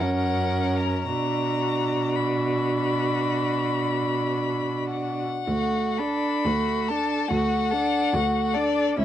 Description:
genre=classical, slow romantic movement for string quartet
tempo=53-73 BPM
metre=4/4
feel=rubato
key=B minor, D major from 5.5 s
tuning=A4 = 440 Hz
part: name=rich violin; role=melody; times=0.0-9.0 s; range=D5 to B5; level=-28 LUFS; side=left 7 dB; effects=none
part: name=rich violin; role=second line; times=0.0-9.0 s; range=E4 to A#4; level=-32 LUFS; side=left 2 dB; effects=none
part: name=rich viola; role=accompaniment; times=0.0-9.0 s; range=A3 to D4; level=-27 LUFS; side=right 3 dB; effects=none
part: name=rich cello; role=bass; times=0.0-9.0 s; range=C#2 to B2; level=-28 LUFS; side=right 2 dB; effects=none
room=moderate studio reverb, RT60 0.8 s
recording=worn, warbling old tape, cassette tape, warbly pitch drift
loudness=-22 LUFS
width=side -11 dB against mid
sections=0.0-5.5 A section; 5.5-9.0 B section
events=none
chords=0.0 F#; 1.1 Bm; 5.5 D

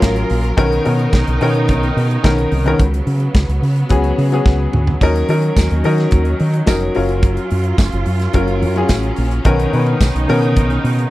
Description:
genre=disco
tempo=108 BPM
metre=4/4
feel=straight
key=F# major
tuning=A4 = 439 Hz
part: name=clear grand piano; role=accompaniment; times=0.0-11.1 s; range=D#3 to B4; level=-18 LUFS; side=left 2 dB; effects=none
part: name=rich studio string section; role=sustained chords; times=0.0-11.1 s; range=C#3 to A#4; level=-24 LUFS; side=right 3 dB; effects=none
part: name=fingered electric bass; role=bass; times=0.0-11.0 s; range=E#1 to D#3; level=-17 LUFS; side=equal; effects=none
part: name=modern studio drum kit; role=drums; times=0.0-11.1 s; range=crash cymbal, hi-hat, kick drum, snare drum, toms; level=-14 LUFS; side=equal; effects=none
part: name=tambourine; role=percussion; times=5.6-10.1 s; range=none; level=-32 LUFS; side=right 17 dB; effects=none
room=little or no reverb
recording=dry, close 1970s-style studio recording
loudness=-13 LUFS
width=side -16 dB against mid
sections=0.0-11.1 A section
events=drum fill 4.5-5.0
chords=0.0 F#maj7; 0.6 Bmaj9; 2.8 C#7sus4; 5.0 D#m7; 7.0 F#maj7; 9.5 Bmaj9

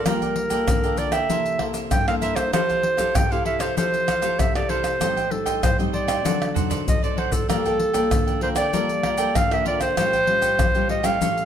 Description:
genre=samba and choro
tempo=97 BPM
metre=4/4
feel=straight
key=unclear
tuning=A4 = 439 Hz
part: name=warm clarinet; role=melody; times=0.0-11.4 s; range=A4 to G5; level=-23 LUFS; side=right 1 dB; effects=none
part: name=cavaquinho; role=accompaniment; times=0.0-11.4 s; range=E4 to G5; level=-29 LUFS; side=right 7 dB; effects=none
part: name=nylon-string guitar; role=accompaniment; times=0.0-11.4 s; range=G2 to A4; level=-28 LUFS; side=left 4 dB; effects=none
part: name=tube shaker, surdo, pandeiro and tamborim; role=percussion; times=0.1-11.4 s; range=none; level=-24 LUFS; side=left 1 dB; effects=none
room=wet large studio reverb, RT60 1.2 s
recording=none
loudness=-19 LUFS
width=side -9 dB against mid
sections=0.0-11.4 A section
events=drum fill 6.3-7.5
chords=0.1 Gm9; 1.3 C6; 2.5 Fmaj9; 5.0 Am7b5; 6.3 D7b9; 7.5 Gm9; 10.0 A7alt

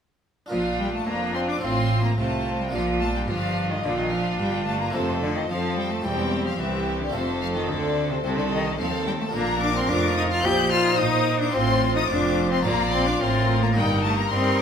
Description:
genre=classical, baroque-style concerto movement with solo episodes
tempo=109 BPM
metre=4/4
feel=straight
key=Bb major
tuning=A4 = 443 Hz
part: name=rich cello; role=melody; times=0.5-14.6 s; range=C3 to G4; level=-27 LUFS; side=left 2 dB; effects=none
part: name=rich chamber violin section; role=melody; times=0.5-14.6 s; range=C5 to G6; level=-29 LUFS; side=left 6 dB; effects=none
part: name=clear chamber violin section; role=second line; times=0.5-14.6 s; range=F4 to D5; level=-29 LUFS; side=right 1 dB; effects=none
part: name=harpsichord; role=accompaniment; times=0.5-14.6 s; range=C2 to Eb5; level=-32 LUFS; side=equal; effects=none
part: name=rich chamber viola section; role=accompaniment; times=0.5-14.6 s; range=C4 to F4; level=-30 LUFS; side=left 3 dB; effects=none
part: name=clear chamber cello section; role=bass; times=0.5-14.6 s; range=C2 to Bb3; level=-31 LUFS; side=right 2 dB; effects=none
part: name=rich chamber double bass section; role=bass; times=0.5-14.6 s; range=E1 to Bb2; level=-28 LUFS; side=right 3 dB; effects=none
room=wet recital hall reverb, RT60 1.4 s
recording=minimal, uncompressed stereo recording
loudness=-21 LUFS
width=side -7 dB against mid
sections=0.5-14.6 A section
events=none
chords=0.5 Bb; 1.6 F/A; 2.7 Bb; 4.9 F; 6.0 C/E; 7.1 F; 9.3 Bb; 10.4 Cm7/Bb; 11.5 F/A; 12.7 Bb; 13.8 Eb/G

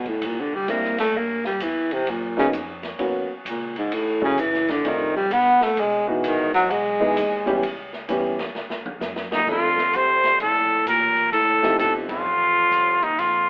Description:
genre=jazz, small-group swing and bop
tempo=130 BPM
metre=4/4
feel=swing 65% on 8ths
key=G minor from 9.5 s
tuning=A4 = 440 Hz
part: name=mellow baritone saxophone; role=second line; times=0.0-13.5 s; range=D#2 to B3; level=-25 LUFS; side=equal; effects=none
part: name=upright bass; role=bass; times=0.0-13.5 s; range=E1 to G2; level=-43 LUFS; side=equal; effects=none
part: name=open jazz drum kit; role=drums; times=0.1-13.3 s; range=crash cymbal, hi-hat, kick drum, ride cymbal, snare drum, toms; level=-34 LUFS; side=equal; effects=none
part: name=warm upright piano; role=accompaniment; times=0.7-12.2 s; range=Eb3 to A4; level=-28 LUFS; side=equal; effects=none
part: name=trumpet with straight mute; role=melody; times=9.3-13.5 s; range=D#4 to C5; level=-20 LUFS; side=equal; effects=none
room=wet studio reverb, RT60 0.8 s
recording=heard from further back in the room, telephone sound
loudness=-22 LUFS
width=mono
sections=0.0-9.5 A section; 9.5-13.5 B section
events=baritone saxophone solo 0.0-9.5; drum fill 8.6-9.5; band accent 12.0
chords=0.2 C9; 2.1 Bmaj9; 3.9 F#m7; 4.8 F13; 5.8 Emaj9; 7.6 C#m7b5; 8.6 D; 9.5 Gm11; 11.3 F7

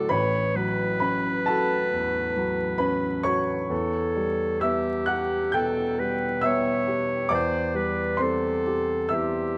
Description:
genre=classical, impressionist duo for clarinet and grand piano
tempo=66 BPM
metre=4/4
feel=rubato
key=E dorian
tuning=A4 = 440 Hz
part: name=clear clarinet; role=melody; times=0.0-9.6 s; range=G4 to C#5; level=-29 LUFS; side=equal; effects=none
part: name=warm baby grand piano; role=accompaniment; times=0.0-9.6 s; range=A1 to G6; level=-28 LUFS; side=equal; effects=none
room=light reverb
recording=close, detailed microphones, vinyl crackle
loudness=-25 LUFS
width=mono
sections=0.0-9.6 A section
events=none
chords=0.1 A69; 3.7 Em6; 7.3 D9sus4/E

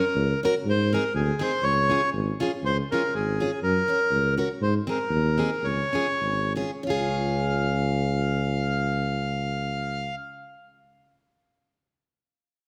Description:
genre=alpine folk, alpine dance band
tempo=84-124 BPM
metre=2/4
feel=swing 55% on 8ths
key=Db major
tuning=A4 = 440 Hz
part: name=accordion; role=melody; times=0.0-10.2 s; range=Ab4 to F5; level=-29 LUFS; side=equal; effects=none
part: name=picked plugged-in steel-string acoustic guitar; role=accompaniment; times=0.0-10.2 s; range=C4 to Bb4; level=-32 LUFS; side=equal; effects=none
part: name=mellow tuba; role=bass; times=0.2-10.1 s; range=Ab1 to Ab2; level=-29 LUFS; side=equal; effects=none
room=moderate concert hall reverb, RT60 2.0 s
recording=none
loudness=-25 LUFS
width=mono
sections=0.0-2.6 A section; 2.6-6.9 B section; 6.9-9.7 C section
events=slowing down 4.6-6.9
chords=0.0 Gb; 0.7 Ab; 1.6 Db; 3.6 Gb; 4.6 Abadd9; 5.6 Db

